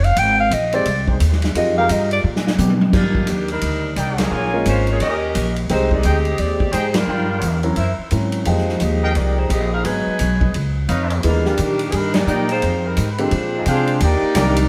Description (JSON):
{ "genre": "jazz, big band swing", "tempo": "173 BPM", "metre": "4/4", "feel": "swing 62% on 8ths", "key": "Eb major", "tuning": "A4 = 441 Hz", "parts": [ { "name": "breathy clarinet", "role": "melody", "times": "0.0-2.2 s", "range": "D5 to G5", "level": "-20 LUFS", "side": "equal", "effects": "none" }, { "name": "upright bass", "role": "bass", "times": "0.0-14.7 s", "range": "F1 to C3", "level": "-22 LUFS", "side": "equal", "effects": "none" }, { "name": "swinging big-band drum kit", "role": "drums", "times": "0.0-14.6 s", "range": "crash cymbal, hi-hat, kick drum, ride cymbal, snare drum, toms", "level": "-26 LUFS", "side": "equal", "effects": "none" }, { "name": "warm grand piano", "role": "accompaniment", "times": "0.7-14.5 s", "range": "D3 to G5", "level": "-26 LUFS", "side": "equal", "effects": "none" }, { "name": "clear trombone section", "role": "sustained chords", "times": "1.1-2.7, 14.3-14.7 s", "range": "G3 to D5", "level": "-30 LUFS", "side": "equal", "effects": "none" }, { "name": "mellow saxophone section", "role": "melody", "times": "3.0-13.9 s", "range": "Eb3 to Ab5", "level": "-26 LUFS", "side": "equal", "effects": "none" }, { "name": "warm trumpet section", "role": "stabs", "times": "4.0-14.0 s", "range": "D4 to Ab5", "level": "-28 LUFS", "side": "equal", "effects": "none" }, { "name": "dark trombone section", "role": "second line", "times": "13.2-14.7 s", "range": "F3 to G4", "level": "-25 LUFS", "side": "equal", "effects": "none" }, { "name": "warm trumpet section", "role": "melody", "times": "13.6-14.7 s", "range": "C4 to G5", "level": "-24 LUFS", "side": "equal", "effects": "none" } ], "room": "moderate echo chamber reverb, RT60 1.5 s", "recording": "heard from further back in the room", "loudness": "-18 LUFS", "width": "mono", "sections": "0.0-2.9 A section; 2.9-14.0 B section", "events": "clarinet solo 0.0-2.9; drum fill 2.2-2.9; band accent 4.1, 6.9, 12.1", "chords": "0.2 Abmaj7; 1.5 Fm11; 2.2 Bb7b9; 2.9 Ebmaj7; 4.3 Bbm7; 5.0 Eb7; 5.7 Abmaj7; 7.1 Gm7; 7.8 Gb7#11; 8.5 Fm11; 9.8 Abm7; 10.5 Db9; 11.2 Ebmaj7; 12.6 Fm7; 13.3 Bb13; 14.0 Ebmaj7" }